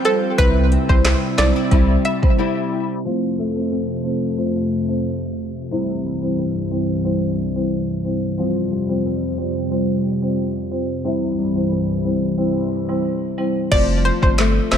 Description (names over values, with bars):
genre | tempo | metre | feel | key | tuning
dancehall | 90 BPM | 4/4 | straight | unclear | A4 = 440 Hz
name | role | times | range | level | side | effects
marimba with medium mallets | accompaniment | 0.0-14.8 s | G3 to C5 | -22 LUFS | equal | none
airy breathy pad | sustained chords | 0.0-13.7 s | C2 to G5 | -25 LUFS | right 1 dB | chorus, sidechain pumping
nylon-string guitar | arpeggios | 0.0-14.8 s | C3 to F4 | -27 LUFS | left 6 dB | analog chorus
afro-pop drum kit | drums | 0.0-2.4, 13.7-14.8 s | crash cymbal, handclaps, hi-hat, kick drum, snare drum | -18 LUFS | equal | vintage 12-bit sampler grit
analog pluck | melody | 0.1-2.2, 13.7-14.8 s | A4 to E5 | -22 LUFS | right 1 dB | chorus, tape echo
saturated sub bass | bass | 0.4-2.0, 13.7-14.8 s | F1 to C2 | -18 LUFS | equal | none
room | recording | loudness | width
light reverb | low-pass filter | -17 LUFS | side -8 dB against mid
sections
0.0-3.0 A section; 3.0-13.7 B section; 13.7-14.8 C section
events
break 2.4-3.0; filter sweep 3.0-13.7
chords
0.4 C; 3.0 F; 5.7 C; 8.4 Fsus2; 11.0 C; 13.7 F